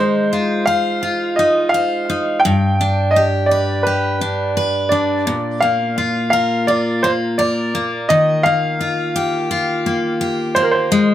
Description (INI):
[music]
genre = pop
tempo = 85 BPM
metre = 4/4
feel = swing 55% on 16ths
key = unclear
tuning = A4 = 439 Hz
[part]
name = clear upright piano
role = melody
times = 0.0-11.1 s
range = Bb4 to G5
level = -18 LUFS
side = right 1 dB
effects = digital delay
[part]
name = picked steel-string acoustic guitar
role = accompaniment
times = 0.0-11.1 s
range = G2 to C5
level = -17 LUFS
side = left 1 dB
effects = none
[sound]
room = moderate studio reverb, RT60 0.5 s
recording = none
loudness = -15 LUFS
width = side -12 dB against mid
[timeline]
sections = 0.0-11.1 A section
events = none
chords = 0.0 Ab6; 2.4 G; 5.3 Bb; 8.1 Ebadd9